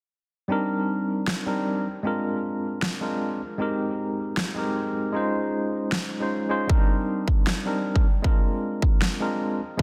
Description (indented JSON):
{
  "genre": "future bass",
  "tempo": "155 BPM",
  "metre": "4/4",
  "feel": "half-time",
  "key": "C minor",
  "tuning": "A4 = 438 Hz",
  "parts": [
    { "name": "tine electric piano", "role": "accompaniment", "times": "0.5-9.8 s", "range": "G3 to C5", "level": "-28 LUFS", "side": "equal", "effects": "medium tremolo, sidechain pumping, tape echo" },
    { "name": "electronic snare drum", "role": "drums", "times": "1.3-9.1 s", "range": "none", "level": "-33 LUFS", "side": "equal", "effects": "overdrive" },
    { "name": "electronic kick drum", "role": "drums", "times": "6.7-9.8 s", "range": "none", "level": "-23 LUFS", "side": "equal", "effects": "overdrive" }
  ],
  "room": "moderate lush hall reverb, RT60 2.3 s",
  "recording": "dense, heavily limited modern master",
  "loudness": "-25 LUFS",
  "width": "mono",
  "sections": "0.5-9.8 A section",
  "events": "none",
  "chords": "0.5 Cm9; 1.9 Bb7; 3.4 Abmaj7; 5.1 Dbmaj7; 6.7 Cm9; 8.1 Bb7"
}